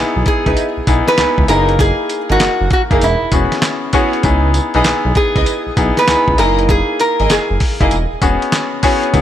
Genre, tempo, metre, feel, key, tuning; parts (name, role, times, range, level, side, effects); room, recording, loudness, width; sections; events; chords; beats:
R&B, new jack swing; 98 BPM; 4/4; swing 66% on 16ths; C# dorian; A4 = 439 Hz
bright concert grand piano; accompaniment; 0.0-9.2 s; A#3 to G#4; -18 LUFS; left 3 dB
smooth gliding synth bass; bass; 0.0-9.2 s; E1 to C#2; -17 LUFS; equal
lap resonator guitar; melody; 0.3-8.8 s; E4 to B4; -16 LUFS; equal
dusty soul sampler-style drum kit; drums; 0.3-9.2 s; handclaps, hi-hat, kick drum, snare drum, tambourine; -17 LUFS; equal
warm studio string section; stabs; 0.5-9.0 s; D#4 to D#5; -22 LUFS; right 4 dB; digital delay
light reverb; -12 LUFS; side -11 dB against mid
0.0-9.2 A section
0.0 C#m9; 1.5 F#13; 3.0 E6; 4.2 C#m9; 6.4 F#13; 7.9 E6
0.57 1.18 | 1.79 2.40 3.02 3.63 | 4.24 4.85 5.46 6.08 | 6.69 7.30 7.91 8.53 | 9.14